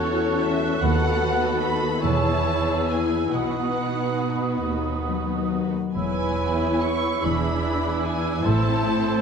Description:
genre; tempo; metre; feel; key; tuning
classical; 47 BPM (dotted quarters); 6/8; uneven beats, rubato; E major; A4 = 440 Hz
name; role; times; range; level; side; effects
rich symphonic violin section; melody; 0.0-9.2 s; C#5 to C#6; -30 LUFS; left 2 dB; none
dark cor anglais; second line; 0.0-9.2 s; B4 to D5; -32 LUFS; right 5 dB; none
mellow clarinet; second line; 0.0-9.2 s; A4 to C#5; -31 LUFS; left 1 dB; none
small flute group; second line; 0.0-9.2 s; D#6 to F#6; -33 LUFS; right 4 dB; none
warm studio violin section; second line; 0.0-9.2 s; E4 to B4; -31 LUFS; left 2 dB; none
warm symphonic viola section; accompaniment; 0.0-9.2 s; B3 to F#4; -29 LUFS; right 2 dB; none
concert harp; arpeggios; 0.0-9.2 s; A2 to B4; -28 LUFS; left 9 dB; none
rich symphonic cello section; bass; 0.0-9.2 s; D#2 to B2; -28 LUFS; right 4 dB; none
warm studio double bass section; bass; 0.8-9.2 s; E1 to D#2; -28 LUFS; right 4 dB; none
room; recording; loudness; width
wet concert hall reverb, RT60 1.7 s; none; -21 LUFS; side -6 dB against mid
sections
0.0-9.2 A section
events
none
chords
0.0 F#m7/E; 0.8 B7/D#; 2.0 E; 3.3 B; 6.0 E; 7.2 E7; 8.5 Am

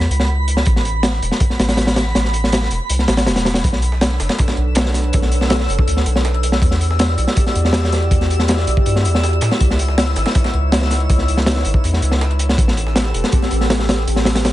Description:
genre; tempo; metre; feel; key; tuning
drum and bass, jungle; 161 BPM; 4/4; straight; unclear; A4 = 441 Hz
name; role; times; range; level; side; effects
soft dub sub bass; bass; 0.0-14.5 s; E1 to A2; -18 LUFS; equal; none
crunchy breakbeat drum kit; drums; 0.0-14.5 s; hi-hat, kick drum, snare drum; -17 LUFS; equal; none
twinkling granular texture; texture; 0.0-14.5 s; B5 to E6; -27 LUFS; left 1 dB; built-in reverb
warbly tape-like pad; sustained chords; 4.1-14.5 s; C4 to D5; -25 LUFS; equal; chorus, built-in reverb, vintage 12-bit sampler grit
breakbeat sampler-style drum kit; drums; 3.6-14.5 s; hi-hat, snare drum; -31 LUFS; right 3 dB; high-pass filter on hats, high-pass filter on snare, high-pass filter on room
room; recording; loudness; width
studio reverb; nothing above 10.7 kHz; -14 LUFS; side -15 dB against mid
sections
0.0-14.5 A section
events
none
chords
0.0 C#m7; 0.7 Asus2; 3.6 Bm9; 6.6 Em9; 9.6 C#m9; 12.6 Am9

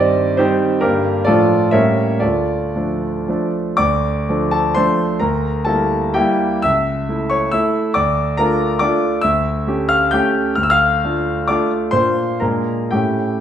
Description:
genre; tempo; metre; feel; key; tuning
classical, romantic triple-time dance for piano with dotted rhythms; 111-145 BPM; 3/4; rubato; D minor; A4 = 437 Hz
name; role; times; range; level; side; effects
clear concert grand piano; solo; 0.0-13.4 s; C#2 to G6; -15 LUFS; equal; none
room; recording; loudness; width
moderate recital hall reverb, RT60 1.3 s; recorded in a church or concert hall; -15 LUFS; side -9 dB against mid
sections
0.0-3.8 A section; 3.8-13.4 B section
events
none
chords
0.0 Cm/G; 0.8 Gm; 1.3 Dm/A; 1.7 A7b9; 2.2 Dm; 5.2 Em7b5/D; 6.6 A/C#; 8.0 Dm; 9.2 A7/D; 10.6 Dm; 11.9 Bb; 12.4 Bb7

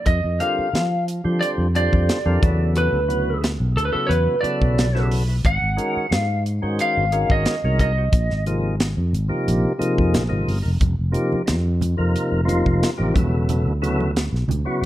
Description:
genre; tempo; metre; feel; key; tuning
electric jazz fusion; 89 BPM; 4/4; straight; unclear; A4 = 439 Hz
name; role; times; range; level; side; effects
lightly driven lead guitar; melody; 0.0-8.4 s; A4 to Gb5; -23 LUFS; right 1 dB; none
sustaining fretless electric bass; bass; 0.1-14.9 s; E1 to F3; -21 LUFS; equal; none
tight funk drum kit; drums; 0.1-14.7 s; hi-hat, kick drum, snare drum; -22 LUFS; equal; none
percussive tonewheel organ; accompaniment; 0.4-14.9 s; C3 to C5; -24 LUFS; equal; slow rotary speaker
congas; percussion; 10.8-14.7 s; none; -30 LUFS; right 3 dB; none
room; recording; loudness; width
light reverb; dark, warm production; -18 LUFS; side -14 dB against mid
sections
0.1-14.9 A section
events
none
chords
0.1 Fsus24; 2.4 E13sus4; 5.4 Ab9sus4; 8.1 Bb13sus4; 10.8 F9sus4; 13.2 E13sus4

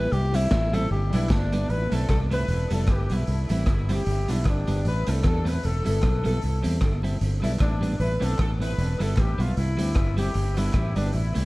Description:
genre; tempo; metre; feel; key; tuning
ska; 153 BPM; 4/4; swing 56% on 8ths; A minor; A4 = 442 Hz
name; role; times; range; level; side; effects
clear tenor saxophone; melody; 0.0-1.3 s; E4 to B4; -28 LUFS; left 2 dB; none
clean electric guitar; accompaniment; 0.0-11.4 s; G3 to E4; -30 LUFS; right 2 dB; wide subtle chorus, analog delay
fingered electric bass; bass; 0.0-11.4 s; E1 to E2; -25 LUFS; equal; none
raw garage drum kit; drums; 0.1-11.4 s; hi-hat, kick drum, rim click, snare drum; -27 LUFS; equal; none
group handclap; percussion; 0.5-10.8 s; none; -46 LUFS; right 2 dB; none
warm horn section; melody; 1.1-11.4 s; D4 to B4; -31 LUFS; left 1 dB; analog delay
room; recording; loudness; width
light reverb, studio reverb; dark, warm production, vinyl crackle; -22 LUFS; side -21 dB against mid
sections
0.0-1.7 A section; 1.7-11.4 B section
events
tenor saxophone solo 0.0-1.7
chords
0.1 C; 0.9 G; 1.7 Am; 2.5 Em; 3.3 C; 4.1 G; 4.8 Am; 5.6 Em; 6.4 C; 7.2 G; 8.0 Am; 8.8 Em; 9.6 C; 10.3 G

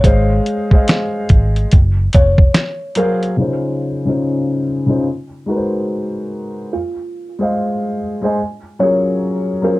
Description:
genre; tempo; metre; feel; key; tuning
lo-fi hip hop; 72 BPM; 4/4; swing 63% on 16ths; Db major; A4 = 441 Hz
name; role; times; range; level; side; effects
buzzing kalimba; melody; 0.0-9.8 s; F4 to Db5; -20 LUFS; left 1 dB; low-pass filter
felt-muted upright piano; accompaniment; 0.0-9.8 s; Db3 to Ab5; -17 LUFS; left 1 dB; cassette tape, low-pass filter
vintage muted fingered electric bass; bass; 0.0-2.5 s; F1 to Ab1; -14 LUFS; equal; none
lo-fi sampler-style drum kit; drums; 0.0-3.4 s; hi-hat, kick drum, snare drum; -11 LUFS; equal; none
room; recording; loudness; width
light reverb; dark, warm production; -14 LUFS; side -19 dB against mid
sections
0.0-3.4 A section; 3.4-9.8 B section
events
break 3.4-6.7; filter sweep 3.4-9.8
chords
0.0 Ab6; 1.7 Gbmaj9#11; 3.4 Dbmaj7; 5.0 Ab9; 6.7 Ab6; 8.4 Gbmaj9

